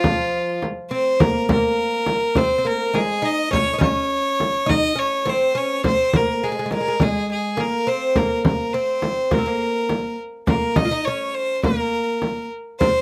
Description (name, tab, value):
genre	Arabic maqam ensemble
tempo	103 BPM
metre	4/4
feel	straight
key	unclear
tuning	A4 = 439 Hz
part	bright violin	melody	0.0-13.0 s	F4 to Eb5	-24 LUFS	equal	none
part	clear chamber violin section	second line	0.0-0.6 s	none	barely audible	none	none
part	oud	second line	0.0-13.0 s	F3 to F4	-26 LUFS	equal	none
part	frame drum	percussion	0.0-12.9 s	none	-23 LUFS	equal	none
room	light reverb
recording	close, detailed microphones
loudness	-21 LUFS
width	mono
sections	0.0-1.2 A section; 1.2-13.0 B section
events	none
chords	none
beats	0.04 0.62 | 1.20 1.78 2.36 2.94 | 3.52 4.10 4.68 5.26 | 5.84 6.42 7.00 7.58 | 8.16 8.74 9.32 9.90 | 10.48 11.06 11.64 12.22 | 12.80